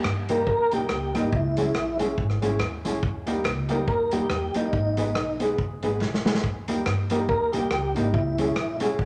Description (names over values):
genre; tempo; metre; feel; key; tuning
ska; 141 BPM; 4/4; swing 58% on 8ths; unclear; A4 = 440 Hz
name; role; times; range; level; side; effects
mellow electric guitar; accompaniment; 0.0-8.9 s; G#3 to B4; -33 LUFS; equal; none
upright bass; bass; 0.0-9.1 s; F#1 to G2; -32 LUFS; equal; none
vintage drum kit; drums; 0.0-9.1 s; hi-hat, kick drum, rim click, snare drum; -31 LUFS; equal; none
group handclap; percussion; 0.0-8.7 s; none; -48 LUFS; equal; none
dark upright piano; stabs; 0.1-8.9 s; G3 to G#4; -33 LUFS; equal; none
mellow tonewheel organ; melody; 0.3-8.8 s; D#4 to A#4; -28 LUFS; equal; chorus vibrato, slow rotary speaker
room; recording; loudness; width
moderate large studio reverb, RT60 1.4 s; none; -25 LUFS; mono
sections
0.0-9.1 A section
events
drum fill 6.0-6.4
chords
0.0 D#; 1.3 C#m; 3.0 D#; 4.7 G#m; 6.4 D#; 8.1 C#m